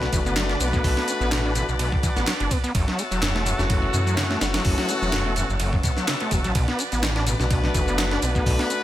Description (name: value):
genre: breakbeat, breaks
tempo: 126 BPM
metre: 4/4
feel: swing 54% on 16ths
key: B minor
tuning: A4 = 440 Hz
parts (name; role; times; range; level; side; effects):
- tonewheel organ; sustained chords; 0.0-8.8 s; F#4 to A5; -30 LUFS; equal; slow rotary speaker, sidechain pumping
- overdriven acid bass; riff; 0.0-8.7 s; F#2 to D4; -28 LUFS; equal; distortion, tape echo
- clear brass ensemble; stabs; 0.0-8.8 s; E3 to B4; -28 LUFS; left 3 dB; tape echo
- phased detuned saw bass; bass; 0.0-8.6 s; E1 to F#2; -26 LUFS; equal; phaser, tube saturation
- breakbeat sampler-style drum kit; drums; 0.0-8.8 s; hi-hat, kick drum, ride cymbal, snare drum; -25 LUFS; equal; none
- electronic shaker and handclaps; drums; 0.1-8.8 s; none; -32 LUFS; left 2 dB; none
- swell; sound effects; 5.8-6.6 s; none; -38 LUFS; left 2 dB; none
room: digital ambience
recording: none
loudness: -20 LUFS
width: side -13 dB against mid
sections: 0.0-8.8 A section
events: swell 5.8-6.6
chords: 0.0 Bm7; 2.7 F#m7; 6.6 Bm7